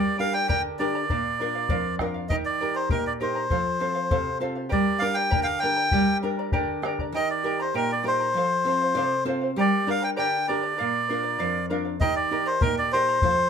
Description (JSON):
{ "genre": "andean folk, Andean ensemble", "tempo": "99 BPM", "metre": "2/4", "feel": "straight", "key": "unclear", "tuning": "A4 = 444 Hz", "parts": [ { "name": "melodica", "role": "melody", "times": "0.0-13.5 s", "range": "Bb4 to G5", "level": "-24 LUFS", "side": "equal", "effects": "none" }, { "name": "charango", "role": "accompaniment", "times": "0.0-13.5 s", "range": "G4 to Bb5", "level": "-30 LUFS", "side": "equal", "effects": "none" }, { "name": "nylon-string guitar", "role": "accompaniment", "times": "0.0-13.5 s", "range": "F2 to D5", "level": "-28 LUFS", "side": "equal", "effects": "none" }, { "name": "bombo", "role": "percussion", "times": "0.5-7.1, 12.0-13.4 s", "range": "none", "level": "-27 LUFS", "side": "left 1 dB", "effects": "none" } ], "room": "wet small room reverb, RT60 0.5 s", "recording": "minimal, uncompressed stereo recording", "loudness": "-22 LUFS", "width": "side -7 dB against mid", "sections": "0.0-7.1 A section; 7.1-13.5 A section", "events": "nylon-string guitar fill 8.7-9.6", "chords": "0.0 Gm; 1.1 Bb; 2.3 Eb; 3.5 F; 4.7 Gm; 7.1 Eb; 8.4 F; 9.6 Gm; 10.8 Bb; 12.0 Eb" }